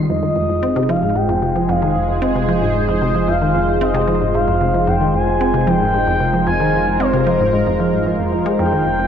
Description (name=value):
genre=ambient, sequencer-driven space music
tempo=113 BPM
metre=4/4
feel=straight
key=F minor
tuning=A4 = 440 Hz
part: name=sweeping resonant pad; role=sustained chords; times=0.0-9.1 s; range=Ab3 to Eb5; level=-20 LUFS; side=left 1 dB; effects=chorus
part: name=resonant blip pluck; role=riff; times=0.0-9.1 s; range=F2 to C4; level=-19 LUFS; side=equal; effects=chorus, analog delay
part: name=warm sub bass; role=bass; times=0.0-9.1 s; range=F1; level=-26 LUFS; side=equal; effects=none
part: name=wind-like tuned noise texture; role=texture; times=0.0-9.1 s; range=C5 to C6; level=-41 LUFS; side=left 3 dB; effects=none
part: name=expressive synth lead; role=melody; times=0.1-9.1 s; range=C5 to Ab5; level=-20 LUFS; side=equal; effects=chorus, analog delay
room=wet concert hall reverb, RT60 2.1 s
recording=cassette tape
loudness=-14 LUFS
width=side -8 dB against mid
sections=0.1-9.1 A section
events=none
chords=0.1 Fm